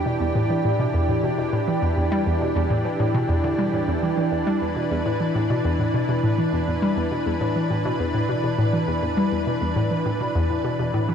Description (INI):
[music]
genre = ambient, sequencer-driven space music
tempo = 102 BPM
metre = 4/4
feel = straight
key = E minor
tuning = A4 = 440 Hz
[part]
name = lush unison pad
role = sustained chords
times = 0.0-11.1 s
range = E3 to B4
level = -24 LUFS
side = equal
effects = chorus
[part]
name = hollow square pluck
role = riff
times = 0.0-11.1 s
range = E2 to G3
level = -23 LUFS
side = equal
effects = chorus, ping-pong delay
[sound]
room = wet lush hall reverb, RT60 2.9 s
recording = dreamy mix soaked in reverb, cassette tape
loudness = -20 LUFS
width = side -8 dB against mid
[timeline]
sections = 0.0-11.1 A section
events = none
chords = 0.0 Em7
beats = 0.21 0.79 1.38 | 1.97 2.56 3.15 3.73 | 4.32 4.91 5.50 6.09 | 6.68 7.26 7.85 8.44 | 9.03 9.62 10.21 10.79